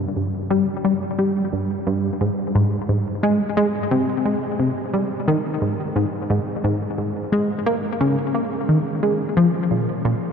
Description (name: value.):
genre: ambient.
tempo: 88 BPM.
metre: 4/4.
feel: straight.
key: unclear.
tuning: A4 = 441 Hz.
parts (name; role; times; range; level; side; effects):
tight sequenced synth; solo; 0.0-10.1 s; G2 to Bb3; -19 LUFS; equal; chorus, ping-pong delay.
room: wet huge ambient reverb, RT60 8.4 s.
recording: in a vast, echoing space.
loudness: -19 LUFS.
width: side -6 dB against mid.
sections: 0.0-10.3 A section.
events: none.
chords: none.